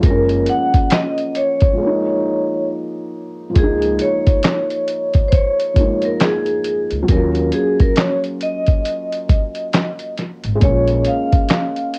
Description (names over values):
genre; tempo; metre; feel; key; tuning
lo-fi hip hop; 68 BPM; 4/4; swing 60% on 16ths; Db major; A4 = 441 Hz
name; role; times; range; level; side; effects
felt-muted upright piano; accompaniment; 0.0-12.0 s; F3 to F4; -24 LUFS; equal; cassette tape, low-pass filter
upright bass; bass; 0.0-11.0 s; Gb1 to Eb2; -23 LUFS; equal; transformer saturation
lo-fi sampler-style drum kit; drums; 0.0-12.0 s; handclaps, hi-hat, kick drum, snare drum; -18 LUFS; equal; vintage 12-bit sampler grit, cassette tape
vibraphone with medium mallets; melody; 0.1-12.0 s; Ab4 to Gb5; -22 LUFS; equal; low-pass filter
finger snap; percussion; 0.9-1.2 s; none; -38 LUFS; equal; none
room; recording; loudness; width
light reverb; home recording on cassette; -17 LUFS; mono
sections
0.0-3.6 A section; 3.6-12.0 B section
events
break 1.8-3.6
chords
0.0 Gbmaj9; 1.8 Db69; 3.6 Db6; 7.1 Ebm7; 10.6 Bbm7